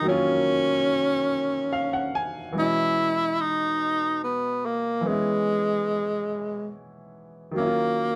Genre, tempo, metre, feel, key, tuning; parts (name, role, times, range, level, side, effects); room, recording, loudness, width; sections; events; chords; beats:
R&B; 48 BPM (dotted quarters); 6/8; straight; C# dorian; A4 = 440 Hz
bright tenor saxophone; melody; 0.0-8.2 s; G#3 to E4; -26 LUFS; equal; slapback echo
bright baby grand piano; accompaniment; 0.0-8.2 s; B2 to G#5; -31 LUFS; equal
moderate studio reverb, RT60 0.5 s; dark, warm production; -25 LUFS; mono
0.0-2.5 A section; 2.5-8.2 B section
grand piano fill 1.3-2.5
0.0 D#m9; 2.5 C#m9; 7.5 D#m9
| 0.04 1.29 | 2.54 3.79 | 5.04 6.29 | 7.54